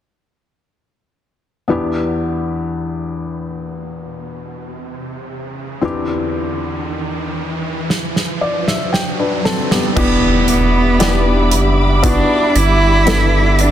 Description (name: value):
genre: pop ballad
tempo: 58 BPM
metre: 4/4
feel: straight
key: unclear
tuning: A4 = 440 Hz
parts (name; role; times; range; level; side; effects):
- felt-muted upright piano; accompaniment; 1.7-13.7 s; E2 to A5; -19 LUFS; left 3 dB; none
- riser and impact; sound effects; 3.1-13.7 s; none; -25 LUFS; right 2 dB; none
- modern studio drum kit; drums; 7.9-13.7 s; crash cymbal, hi-hat, kick drum, snare drum; -19 LUFS; right 1 dB; none
- clear cello; melody; 10.0-13.7 s; B3 to E4; -16 LUFS; right 1 dB; ping-pong delay
- dark studio string section; sustained chords; 10.0-13.7 s; G3 to D6; -20 LUFS; right 2 dB; none
- warm sub bass; bass; 10.0-13.7 s; E1 to G1; -16 LUFS; equal; none
room: light reverb, studio ambience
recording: dense, heavily limited modern master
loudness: -14 LUFS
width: side -11 dB against mid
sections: 1.7-10.0 A section; 10.0-13.7 B section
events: riser 3.1-10.0; felt piano fill 7.9-10.0; drum fill 7.9-10.0; impact 10.0-13.7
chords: 1.7 Em7; 5.8 Cadd9/E; 10.0 Em7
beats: | 1.69 2.72 3.76 4.79 | 5.83 6.86 7.90 8.93 | 9.97 11.00 12.04 13.07